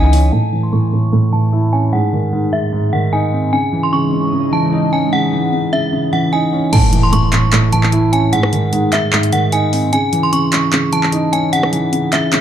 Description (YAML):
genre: hip hop, trap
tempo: 150 BPM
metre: 4/4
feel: half-time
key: C# minor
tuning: A4 = 440 Hz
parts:
  - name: metallic FM bell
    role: melody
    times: 0.0-12.3 s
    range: E5 to C#6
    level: -19 LUFS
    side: equal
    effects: chorus, low-pass filter, digital delay
  - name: dark baby grand piano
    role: accompaniment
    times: 0.0-12.4 s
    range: G#2 to E4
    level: -15 LUFS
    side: right 1 dB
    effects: low-pass filter
  - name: airy breathy pad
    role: sustained chords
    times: 0.0-0.3, 3.5-6.7 s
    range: C#3 to D#4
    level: -24 LUFS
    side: equal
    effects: chorus, phaser, low-pass filter
  - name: trap drum kit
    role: drums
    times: 0.1-0.2, 6.7-12.4 s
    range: crash cymbal, handclaps, hi-hat, rim click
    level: -19 LUFS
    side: equal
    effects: overdrive
  - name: impact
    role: sound effects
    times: 6.7-8.3 s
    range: none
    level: -18 LUFS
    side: equal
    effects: none
room: light reverb, digital ambience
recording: dark, warm production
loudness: -12 LUFS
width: side -10 dB against mid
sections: 0.3-6.7 A section; 6.7-12.4 B section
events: filter sweep 0.3-6.7; kick muted 6.7-12.4; impact 6.7-8.3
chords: 0.3 A; 1.9 G#; 3.5 C#madd9; 6.7 A; 8.3 G#; 9.9 C#madd9